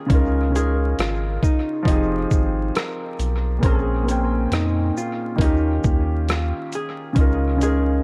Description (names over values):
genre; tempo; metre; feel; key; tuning
lo-fi hip hop; 68 BPM; 4/4; swing 65% on 16ths; unclear; A4 = 440 Hz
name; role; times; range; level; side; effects
hollow-body jazz guitar; melody; 0.0-8.0 s; Eb4 to Bb4; -30 LUFS; equal; low-pass filter, analog delay
warm upright piano; accompaniment; 0.0-8.0 s; Bb2 to G5; -26 LUFS; equal; cassette tape, low-pass filter, analog delay
round analog bass; bass; 0.1-8.0 s; F1 to F2; -24 LUFS; equal; none
dusty soul sampler-style drum kit; drums; 0.1-7.9 s; hi-hat, kick drum, rim click, shaker; -23 LUFS; equal; none
room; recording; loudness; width
light reverb; echo-heavy mix, vinyl crackle; -21 LUFS; mono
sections
0.0-8.0 A section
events
none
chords
0.1 Db69; 1.9 Fm9; 3.6 Bbm9; 5.4 Eb9; 7.2 Db69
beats
| 0.10 0.98 1.87 2.75 | 3.63 4.51 5.40 6.28 | 7.16